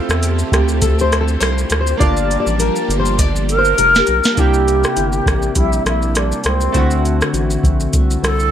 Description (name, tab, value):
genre	indie pop, bedroom pop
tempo	101 BPM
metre	4/4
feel	swing 55% on 16ths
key	unclear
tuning	A4 = 440 Hz
part	chorused retro synth keys	accompaniment	0.0-8.5 s	A3 to A5	-24 LUFS	right 5 dB	cassette tape
part	string machine, violas	sustained chords	0.0-4.4 s	D3 to G4	-25 LUFS	equal	ensemble chorus
part	round analog bass	bass	0.1-8.5 s	F1 to E2	-18 LUFS	equal	none
part	soft vintage rhythm box	drums	0.1-8.5 s	hi-hat, kick drum, rim click, shaker, snare drum	-18 LUFS	equal	none
part	nylon-string guitar	accompaniment	0.5-8.5 s	C3 to D5	-21 LUFS	left 5 dB	lush chorus, warbly pitch drift
part	alto flute	melody	3.5-8.5 s	C4 to Bb4	-16 LUFS	equal	wide subtle chorus
room	light reverb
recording	none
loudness	-13 LUFS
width	side -10 dB against mid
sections	0.0-4.4 A section; 4.4-8.5 B section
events	nylon-string guitar solo 0.0-4.4; drum fill 2.0-4.4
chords	0.0 Dm7; 2.0 Gm9; 4.4 C7; 6.7 D7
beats	0.23 0.82 1.41 | 2.00 2.60 3.19 3.78 | 4.37 4.97 5.56 6.15 | 6.75 7.34 7.93